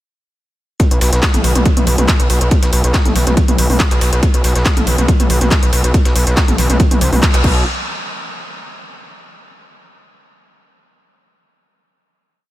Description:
driving peak-time techno; 140 BPM; 4/4; straight; A4 = 440 Hz
dusty soul sampler-style drum kit; drums; 0.8-7.4 s; ride cymbal, snare drum; -28 LUFS; right 2 dB; sidechain pumping on cymbals, high-pass filter on cymbals, high-pass filter on snare
electronic kick drum; drums; 0.8-7.5 s; -14 LUFS; equal
techno drum kit; drums; 0.8-7.5 s; crash cymbal, handclaps, hi-hat, toms; -18 LUFS; equal
gritty driven synth bass; bass; 0.9-7.6 s; A1 to C2; -15 LUFS; equal; distortion, sidechain pumping
light reverb, digital ambience; -11 LUFS; side -15 dB against mid
0.8-7.7 drop; 7.7-9.4 final hit
drop 0.8-7.7; band accent 7.2
| 0.80 1.23 1.66 2.08 | 2.51 2.94 3.37 3.80 | 4.23 4.66 5.08 5.51 | 5.94 6.37 6.80 7.23

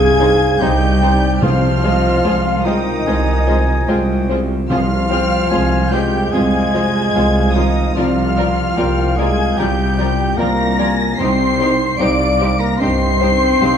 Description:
cinematic; 74 BPM; 4/4; rubato; A4 = 441 Hz
clear symphonic violin section; melody; 0.0-13.8 s; Eb6 to D7; -24 LUFS; left 3 dB
dark clarinet; second line; 0.0-13.8 s; C5 to Ab5; -26 LUFS; right 1 dB
dark cor anglais; second line; 0.0-13.8 s; Eb4 to D5; -24 LUFS; right 3 dB
hollow flute section; second line; 0.0-13.8 s; Eb5 to D6; -24 LUFS; equal
felt-muted upright piano; accompaniment; 0.0-13.8 s; C2 to D5; -22 LUFS; left 2 dB
warm French horn section; sustained chords; 0.0-13.8 s; Eb3 to D5; -20 LUFS; left 3 dB
rich studio double bass section; bass; 0.0-13.8 s; C2; -20 LUFS; right 2 dB
rich symphonic cello section; bass; 0.0-13.8 s; C2; -22 LUFS; right 2 dB
rich symphonic violin section; second line; 0.2-13.7 s; Eb4 to D5; -29 LUFS; left 1 dB
clear symphonic viola section; accompaniment; 0.2-13.7 s; Eb3 to F4; -27 LUFS; right 1 dB
timpani; percussion; 1.4-5.9 s; C3; -22 LUFS; equal
moderate scoring stage reverb, RT60 1.7 s; dark, warm production, faint mains hum; -13 LUFS; side -8 dB against mid
0.0-13.8 A section
0.0 Cm; 1.4 Fm/C; 8.0 Bb/C; 11.2 Cm
0.60 | 1.42 2.24 3.06 3.88 | 4.69 5.51 6.33 7.14 | 7.96 8.77 9.58 10.39 | 11.19 12.00 12.80 13.61

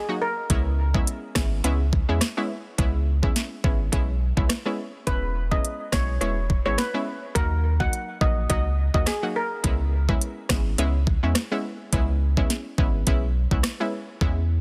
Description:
dancehall; 105 BPM; 4/4; swing 56% on 16ths; A4 = 440 Hz
steel pan; melody; 0.0-0.3, 5.1-9.5 s; Ab4 to Gb5; -31 LUFS; equal; tape echo
analog pluck; accompaniment; 0.1-14.4 s; Gb3 to Gb4; -32 LUFS; equal; chorus, sidechain pumping
warm sub bass; bass; 0.5-14.6 s; E1 to Fb2; -26 LUFS; equal
island pop drum kit; drums; 0.5-14.4 s; hi-hat, kick drum, rim click, snare drum; -26 LUFS; equal; overdrive
little or no reverb; dense, heavily limited modern master; -24 LUFS; mono
0.0-14.2 A section
hi-hats muted 14.2-14.6
0.5 Dbm7; 5.1 E6; 7.4 Ebm; 9.6 Dbm7
| 0.50 1.07 1.64 2.21 | 2.79 3.36 3.93 4.50 | 5.07 5.64 6.21 6.79 | 7.36 7.93 8.50 9.07 | 9.64 10.21 10.79 11.36 | 11.93 12.50 13.07 13.64 | 14.21

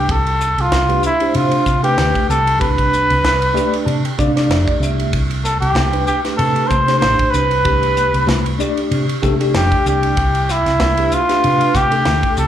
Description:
electric jazz fusion; 95 BPM; 4/4; swing 55% on 16ths; C major; A4 = 443 Hz
warm trumpet; melody; 0.0-12.5 s; E4 to C5; -16 LUFS; equal; slapback echo
tine electric piano; accompaniment; 0.0-12.5 s; A3 to A5; -21 LUFS; equal; fast stereo tremolo, phaser, slapback echo
hollow-body short-scale fingered electric bass; bass; 0.0-12.5 s; F1 to C3; -18 LUFS; equal
crisp fusion drum kit; drums; 0.1-12.5 s; hi-hat, kick drum, ride cymbal, snare drum; -22 LUFS; equal
congas; percussion; 5.1-12.2 s; -27 LUFS; left 3 dB; slapback echo
studio reverb; live gig heard through the venue's PA, club reverb; -13 LUFS; side -10 dB against mid
0.0-12.5 A section
tine electric piano fill 3.2-5.1
0.1 Cmaj7sus2; 2.6 G9/C; 5.1 Csus2; 7.6 Gadd9/C
| 0.09 0.72 1.35 1.98 | 2.61 3.24 3.87 4.50 | 5.13 5.76 6.39 7.02 | 7.65 8.28 8.91 9.54 | 10.17 10.80 11.43 12.06

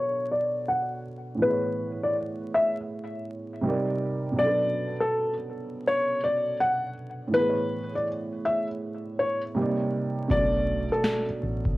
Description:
lo-fi hip hop; 81 BPM; 4/4; swing 66% on 16ths; B dorian; A4 = 440 Hz
felt-muted upright piano; melody; 0.0-11.3 s; A4 to F#5; -25 LUFS; left 1 dB; low-pass filter, cassette tape, plate reverb
felt-muted upright piano; accompaniment; 0.0-11.8 s; A2 to D5; -30 LUFS; right 2 dB; cassette tape, low-pass filter, plate reverb
hollow-body short-scale fingered electric bass; bass; 10.3-11.8 s; A1 to B1; -31 LUFS; equal; tube saturation
booming analog drum machine; drums; 10.3-11.8 s; kick drum, snare drum; -29 LUFS; equal; cassette tape
moderate studio ambience, RT60 0.5 s; home recording on cassette, vinyl crackle; -24 LUFS; side -18 dB against mid
0.0-10.3 A section; 10.3-11.8 B section
filter sweep 0.0-10.3; hi-hats muted 10.3-11.8
0.0 Bm7; 1.4 Amaj9; 3.6 Cm9; 4.4 Bm7; 7.3 Amaj9; 9.6 Cm9; 10.3 Bm7
0.67 | 1.41 2.15 2.90 3.64 | 4.38 5.12 5.86 6.60 | 7.34 8.08 8.82 9.56 | 10.30 11.04

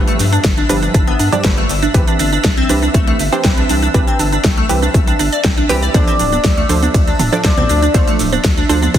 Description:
progressive house; 120 BPM; 4/4; straight; A4 = 442 Hz
wide unison pluck; stabs; 0.0-9.0 s; G2 to D5; -20 LUFS; right 2 dB; sidechain pumping, ping-pong delay
round analog bass; bass; 0.0-9.0 s; D1 to G2; -19 LUFS; left 1 dB; sidechain pumping
downlifter; sound effects; 0.0-1.9 s; -33 LUFS; left 1 dB
twinkling granular texture; texture; 0.0-9.0 s; E5 to E6; -27 LUFS; right 1 dB; built-in reverb, sidechain pumping
glassy wavetable pluck; arpeggios; 0.1-9.0 s; A3 to D5; -18 LUFS; right 1 dB; chorus, phaser, sidechain pumping, ping-pong delay
big-room dance drum kit; drums; 0.1-9.0 s; hi-hat, ride cymbal, shaker, snare drum; -21 LUFS; equal
electronic kick drum; drums; 0.4-9.0 s; -14 LUFS; equal
expressive synth lead; melody; 5.9-8.1 s; D5; -20 LUFS; left 2 dB; lush chorus, sidechain pumping, digital delay
electronic congas, toms and bongos; percussion; 5.9-8.9 s; -22 LUFS; right 3 dB; sidechain pumping on perc, sidechain pumping on toms
light reverb, digital ambience; heavily compressed radio sound, multiband compression; -11 LUFS; side -10 dB against mid
0.0-9.0 A section
0.0 G7; 1.9 Cmaj7; 5.9 Dm7
0.44 0.94 1.44 | 1.94 2.44 2.94 3.44 | 3.94 4.44 4.94 5.44 | 5.94 6.44 6.94 7.44 | 7.94 8.44 8.94

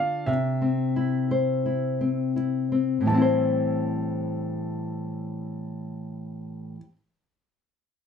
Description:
pop; 86 BPM; 4/4; swing 60% on 16ths; A minor; A4 = 440 Hz
warm upright piano; melody; 0.0-6.8 s; E5 to A5; -32 LUFS; right 2 dB
nylon-string guitar; accompaniment; 0.0-7.0 s; A2 to C5; -24 LUFS; left 2 dB
moderate studio reverb, RT60 0.6 s; dark, warm production; -23 LUFS; side -7 dB against mid
0.0-3.1 A section; 3.1-5.9 B section
0.3 C; 3.1 Am7
| 0.27 0.97 1.67 2.38 | 3.08 3.78 4.48 5.18

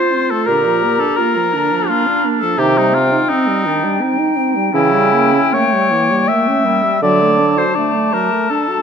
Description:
classical, slow romantic movement for wind quintet; 74-86 BPM; 3/4; rubato; A4 = 440 Hz
hollow concert flute; melody; 0.0-8.8 s; G5 to C6; -22 LUFS; left 9 dB
warm oboe; second line; 0.0-8.8 s; Eb4 to E5; -16 LUFS; left 3 dB
warm French horn; accompaniment; 0.0-8.8 s; D3 to F#4; -20 LUFS; equal
warm clarinet; accompaniment; 0.0-8.8 s; F#3 to G4; -20 LUFS; right 8 dB
mellow bassoon; bass; 0.5-7.6 s; Bb2 to D3; -18 LUFS; right 3 dB
moderate concert hall reverb, RT60 2.0 s; -12 LUFS; side -7 dB against mid
0.0-8.8 A section
0.5 Bb; 2.6 Cm; 4.7 C#dim7; 7.0 D
| 0.47 1.17 1.88 | 2.59 3.30 4.02 | 4.74 5.52 6.27 | 7.02 7.75 8.50

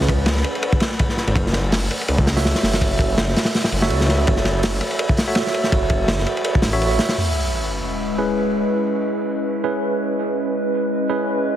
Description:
drum and bass, jungle; 165 BPM; 4/4; swing 55% on 16ths; C# minor; A4 = 440 Hz
tine electric piano; stabs; 0.0-11.6 s; C#4 to E5; -24 LUFS; right 2 dB; medium stereo tremolo, low-pass filter, dub echo
detuned saw bass; bass; 0.0-7.0 s; F#1 to C#2; -21 LUFS; equal; tube saturation
crunchy breakbeat drum kit; drums; 0.0-7.2 s; hi-hat, kick drum, ride cymbal, snare drum; -20 LUFS; equal
warbly tape-like pad; sustained chords; 7.6-11.6 s; G#3 to D#5; -22 LUFS; left 1 dB; chorus, built-in reverb
sub drop; sound effects; 7.2-8.6 s; -26 LUFS; equal
moderate echo chamber reverb, RT60 2.5 s; heavily compressed radio sound, multiband compression, faint mains hum; -17 LUFS; side -11 dB against mid
0.0-7.2 A section; 7.2-11.6 B section
impact 7.2-8.6; filter sweep on tine electric piano 7.2-11.6
0.0 C#m7; 1.4 F#m7; 7.2 C#m7
0.27 0.63 0.99 | 1.36 1.72 2.09 2.45 | 2.81 3.18 3.54 3.90 | 4.27 4.63 5.00 5.36 | 5.72 6.09 6.45 6.81 | 7.18 7.54 7.90 8.27 | 8.63 8.99 9.36 9.72 | 10.09 10.45 10.81 11.18 | 11.54

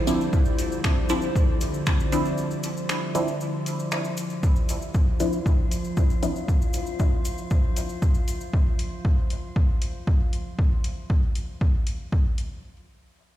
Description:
dub techno; 117 BPM; 4/4; straight; D minor; A4 = 441 Hz
warbly tape-like pad; sustained chords; 0.0-4.4 s; D3 to C5; -31 LUFS; equal; chorus, built-in reverb, sidechain pumping
metallic inharmonic drone; texture; 0.0-10.6 s; F3 to F4; -34 LUFS; equal; chorus, built-in reverb, sidechain pumping
filtered dub chord stab; stabs; 0.1-6.7 s; F3 to E4; -29 LUFS; equal; phaser, sidechain pumping, dub echo
deep house drum kit; drums; 0.1-12.5 s; finger snaps, hi-hat; -34 LUFS; left 1 dB; overdrive, dub echo
cabasa; percussion; 0.1-8.5 s; -40 LUFS; left 2 dB
electronic kick drum; drums; 0.3-12.2 s; -22 LUFS; equal
digital ambience; played on a big sound system in a bare room, stone room reverb; -22 LUFS; side -13 dB against mid
0.0-4.4 A section; 4.4-12.6 B section
break 2.4-4.4; filter sweep on synth stab 4.4-6.5
0.0 Dm9; 4.4 N.C.
| 0.33 0.84 1.35 1.87 | 2.38 2.89 3.40 3.92 | 4.43 4.94 5.46 5.97 | 6.48 7.00 7.51 8.02 | 8.53 9.05 9.56 10.07 | 10.59 11.10 11.61 12.12

